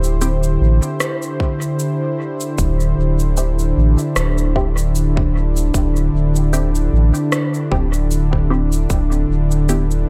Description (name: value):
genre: ambient dub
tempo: 76 BPM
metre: 4/4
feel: swing 55% on 16ths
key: unclear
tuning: A4 = 441 Hz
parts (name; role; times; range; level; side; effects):
- warm analog pad; sustained chords; 0.0-10.1 s; D3 to C5; -22 LUFS; equal; chorus
- warm sub bass; bass; 0.0-10.1 s; D1 to A1; -19 LUFS; equal; tube saturation
- electronic cabasa and rim click; drums; 0.0-10.1 s; none; -28 LUFS; equal; dub echo
- filtered dub chord stab; stabs; 0.2-9.9 s; B3 to G4; -30 LUFS; equal; phaser, subtle chorus, dub echo
- electronic kick drum; drums; 1.4-9.1 s; none; -23 LUFS; equal; none
room: little or no reverb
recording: none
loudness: -18 LUFS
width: mono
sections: 0.0-10.1 A section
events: none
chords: 0.0 D9sus4; 8.9 G6/D